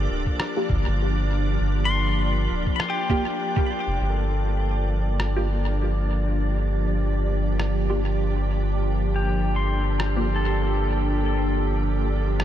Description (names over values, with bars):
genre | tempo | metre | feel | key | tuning
ambient dub | 100 BPM | 4/4 | swing 57% on 16ths | G minor | A4 = 442 Hz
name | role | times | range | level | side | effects
soft additive organ-like pad | sustained chords | 0.0-12.4 s | F3 to D5 | -28 LUFS | right 1 dB | ensemble chorus, built-in reverb
pedal steel guitar | arpeggios | 0.0-12.4 s | G4 to C6 | -30 LUFS | left 3 dB | low-pass filter, ping-pong delay
soft dub sub bass | bass | 0.0-12.4 s | D1 to G1 | -23 LUFS | equal | none
electronic kick drum | drums | 0.3-3.7 s | none | -24 LUFS | equal | none
electronic rim click | drums | 0.4-12.4 s | none | -34 LUFS | equal | dub echo
filtered dub chord stab | stabs | 0.6-10.3 s | Bb3 to G4 | -33 LUFS | right 1 dB | phaser, ensemble chorus, dub echo
wind-like tuned noise texture | texture | 4.8-12.4 s | D4 to D5 | -35 LUFS | left 1 dB | built-in reverb, lush chorus
room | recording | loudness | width
light reverb, digital ambience | none | -21 LUFS | side -11 dB against mid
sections
0.0-4.0 A section; 4.0-12.4 B section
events
filter sweep on synth stab 0.0-4.0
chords
0.0 Gm7